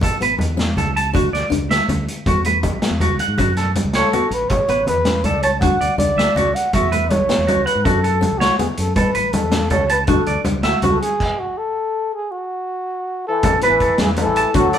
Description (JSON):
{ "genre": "highlife guitar band", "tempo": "107 BPM (dotted quarters)", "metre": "12/8", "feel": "straight", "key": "A major", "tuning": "A4 = 439 Hz", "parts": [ { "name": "clean electric guitar", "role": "arpeggios", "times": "0.0-14.8 s", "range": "F#4 to A5", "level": "-20 LUFS", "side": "right 3 dB", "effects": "none" }, { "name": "fingered electric bass", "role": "bass", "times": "0.0-14.7 s", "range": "A1 to G#2", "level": "-23 LUFS", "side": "equal", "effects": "none" }, { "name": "vintage drum kit", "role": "drums", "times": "0.0-14.8 s", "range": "crash cymbal, hi-hat, kick drum, snare drum", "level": "-23 LUFS", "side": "equal", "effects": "none" }, { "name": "congas", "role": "percussion", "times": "0.0-14.6 s", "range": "none", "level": "-24 LUFS", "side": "left 1 dB", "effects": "none" }, { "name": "fingerpicked steel-string acoustic guitar", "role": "accompaniment", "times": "0.2-14.8 s", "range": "A3 to D4", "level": "-26 LUFS", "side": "left 5 dB", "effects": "none" }, { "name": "breathy trumpet", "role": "melody", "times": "4.0-14.8 s", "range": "F#4 to F#5", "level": "-20 LUFS", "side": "equal", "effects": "none" }, { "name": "trombone with plunger mute", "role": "second line", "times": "13.3-14.8 s", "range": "E3 to F#3", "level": "-23 LUFS", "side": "left 3 dB", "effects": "none" } ], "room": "moderate stone room reverb, RT60 1.1 s", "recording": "band playing live in one room", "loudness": "-15 LUFS", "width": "side -9 dB against mid", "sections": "0.0-13.4 A section; 13.4-14.8 B section", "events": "stop 11.2-13.4", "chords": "0.0 Aadd9; 1.1 D; 2.3 Esus2; 3.4 F#m; 4.5 Aadd9; 5.6 D; 6.7 Esus2; 7.8 F#m; 9.0 Aadd9; 10.1 D; 11.2 N.C.; 13.4 Aadd9", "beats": "| 0.02 0.58 1.14 1.70 | 2.26 2.82 3.38 3.94 | 4.50 5.05 5.61 6.17 | 6.73 7.29 7.85 8.41 | 8.97 9.53 10.08 10.64 | 11.20 11.76 12.32 12.87 | 13.43 13.99 14.54" }